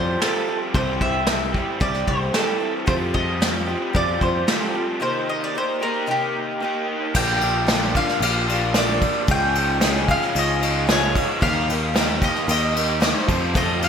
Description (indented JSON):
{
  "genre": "folk rock and heartland rock",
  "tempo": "112 BPM",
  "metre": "4/4",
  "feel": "straight",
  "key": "unclear",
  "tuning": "A4 = 440 Hz",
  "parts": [
    { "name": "mandolin", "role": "melody", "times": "0.0-13.9 s", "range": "G4 to G5", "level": "-24 LUFS", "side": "right 1 dB", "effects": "digital delay" },
    { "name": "picked steel-string acoustic guitar", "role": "accompaniment", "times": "0.0-13.9 s", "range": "Bb2 to Bb4", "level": "-29 LUFS", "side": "left 4 dB", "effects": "analog chorus" },
    { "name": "raw garage guitar", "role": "riff", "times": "0.0-13.9 s", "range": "F2 to G4", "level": "-26 LUFS", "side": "equal", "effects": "overdrive, analog chorus" },
    { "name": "picked electric bass", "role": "bass", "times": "0.0-13.9 s", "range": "Bb1 to F2", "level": "-26 LUFS", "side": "equal", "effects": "none" },
    { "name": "soft brush drum kit", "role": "drums", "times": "0.2-13.9 s", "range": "crash cymbal, hi-hat, kick drum, snare drum", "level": "-23 LUFS", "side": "equal", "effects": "gated reverb" },
    { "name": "hand-pumped harmonium", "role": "sustained chords", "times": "7.1-13.9 s", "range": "Eb4 to Eb5", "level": "-34 LUFS", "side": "right 2 dB", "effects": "none" }
  ],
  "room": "moderate lush hall reverb, RT60 1.9 s, studio reverb",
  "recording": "bright 1980s-style digital production",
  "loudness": "-18 LUFS",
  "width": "side -7 dB against mid",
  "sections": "0.0-7.2 A section; 7.2-13.9 B section",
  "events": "break 5.0-7.2",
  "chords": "0.0 Fsus2; 0.7 C; 2.9 Fsus2; 5.0 Eb6; 7.2 Bb6; 9.3 Dbadd9; 11.4 Eb; 13.3 Fadd9",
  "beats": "0.21 | 0.74 1.28 1.81 2.35 | 2.88 3.41 3.95 4.48 | 5.01 5.55 6.08 6.62 | 7.15 7.68 8.22 8.75 | 9.28 9.82 10.35 10.88 | 11.42 11.95 12.48 13.02 | 13.55"
}